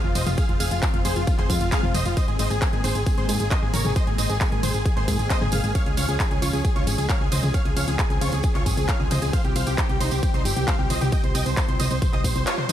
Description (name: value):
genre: uplifting trance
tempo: 134 BPM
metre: 4/4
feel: straight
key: F minor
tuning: A4 = 439 Hz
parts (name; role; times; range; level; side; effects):
- big supersaw lead; melody; 0.0-12.7 s; Eb4 to G5; -28 LUFS; equal; sidechain pumping, tape echo
- analog pluck; second line; 0.0-12.7 s; F5 to G6; -36 LUFS; left 1 dB; chorus, sidechain pumping, tape echo
- analog string pad; sustained chords; 0.0-12.7 s; F3 to Db4; -32 LUFS; left 2 dB; ensemble chorus, sidechain pumping
- solid FM bass; bass; 0.0-12.4 s; F1 to Ab2; -25 LUFS; equal; sidechain pumping
- big-room dance drum kit; drums; 0.2-12.7 s; handclaps, hi-hat, ride cymbal, toms; -30 LUFS; left 1 dB; studio reverb
- tambourine; percussion; 0.2-12.7 s; none; -34 LUFS; right 5 dB; none
- electronic kick drum; drums; 0.4-12.3 s; none; -23 LUFS; equal; studio reverb
room: digital ambience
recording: dark, warm production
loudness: -20 LUFS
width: side -11 dB against mid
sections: 0.0-12.7 A section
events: band accent 12.5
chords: 0.0 Fm; 2.2 Abadd9; 5.8 Db; 9.3 Csus4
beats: | 0.38 0.83 1.27 1.72 | 2.17 2.62 3.06 3.51 | 3.96 4.41 4.86 5.30 | 5.75 6.20 6.65 7.09 | 7.54 7.99 8.44 8.89 | 9.33 9.78 10.23 10.68 | 11.12 11.57 12.02 12.47